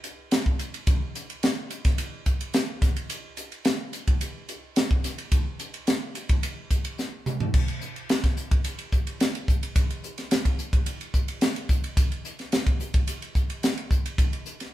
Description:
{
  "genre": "jazz",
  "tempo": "108 BPM",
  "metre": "4/4",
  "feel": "straight",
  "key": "none",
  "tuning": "none",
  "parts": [
    { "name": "crisp fusion drum kit", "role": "drums", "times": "0.0-14.7 s", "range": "crash cymbal, hi-hat, kick drum, ride cymbal, snare drum, toms", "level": "-24 LUFS", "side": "equal", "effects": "none" }
  ],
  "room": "light reverb",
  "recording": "band playing live in one room",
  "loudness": "-24 LUFS",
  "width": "side -14 dB against mid",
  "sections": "0.0-7.5 A section; 7.5-14.7 B section",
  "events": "drum fill 7.0-7.5",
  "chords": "none",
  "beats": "0.32 | 0.88 1.43 1.99 2.54 | 3.10 3.65 4.21 4.76 | 5.32 5.88 6.43 6.99 | 7.54 8.10 8.65 9.20 | 9.76 10.31 10.87 11.42 | 11.97 12.52 13.08 13.63 | 14.18"
}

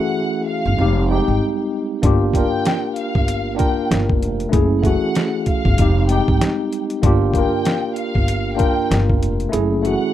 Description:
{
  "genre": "hip hop, boom-bap hip-hop",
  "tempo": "96 BPM",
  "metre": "4/4",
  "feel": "swing 60% on 16ths",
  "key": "G phrygian",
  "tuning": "A4 = 440 Hz",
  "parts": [
    { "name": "warm studio violin section", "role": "melody", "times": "0.0-10.1 s", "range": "F5 to G5", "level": "-26 LUFS", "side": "left 1 dB", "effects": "high-pass filter, low-pass filter, plate reverb, ping-pong delay" },
    { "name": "mellow tine electric piano", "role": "accompaniment", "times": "0.0-10.1 s", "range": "E3 to Bb4", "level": "-20 LUFS", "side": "equal", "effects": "medium stereo tremolo, cassette tape, high-pass filter, low-pass filter, plate reverb" },
    { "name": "upright bass", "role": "bass", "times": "0.7-9.9 s", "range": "F1 to Ab1", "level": "-19 LUFS", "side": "equal", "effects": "none" },
    { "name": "boom bap sampler-style drum kit", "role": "drums", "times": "2.0-10.0 s", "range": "hi-hat, kick drum, snare drum", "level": "-19 LUFS", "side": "equal", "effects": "none" }
  ],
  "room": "light reverb",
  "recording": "rough home demo mix",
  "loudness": "-16 LUFS",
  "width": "side -12 dB against mid",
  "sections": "0.0-10.1 A section",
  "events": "kick muted 9.5-10.1",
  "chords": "0.0 F#m7; 0.8 Fm7; 2.0 Gm7; 4.5 F#m7; 5.8 Fm7; 7.0 Gm7; 9.5 F#m7",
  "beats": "0.16 0.78 1.41 | 2.03 2.66 3.28 3.91 | 4.53 5.16 5.78 6.41 | 7.03 7.66 8.28 8.91 | 9.53"
}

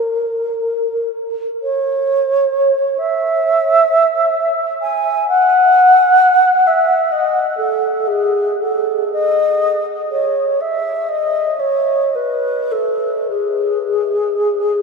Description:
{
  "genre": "classical, free, expressive piece for unaccompanied alto flute",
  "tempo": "52-70 BPM",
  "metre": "4/4",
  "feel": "rubato",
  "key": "C# minor",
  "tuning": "A4 = 436 Hz",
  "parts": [
    { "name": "mellow wooden-headed alto flute", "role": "solo", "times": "0.0-14.8 s", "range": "G#4 to G#5", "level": "-13 LUFS", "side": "equal", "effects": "none" }
  ],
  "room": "wet huge ambient reverb, RT60 7.0 s",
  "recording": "in a vast, echoing space",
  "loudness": "-13 LUFS",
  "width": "side -4 dB against mid",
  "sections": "0.0-14.8 A section",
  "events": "none",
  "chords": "none",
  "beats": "0.75 | 1.62 2.54 3.46 4.37 | 5.29 6.21 7.13 8.07 | 9.14 10.12 11.10 12.14 | 13.28 14.40"
}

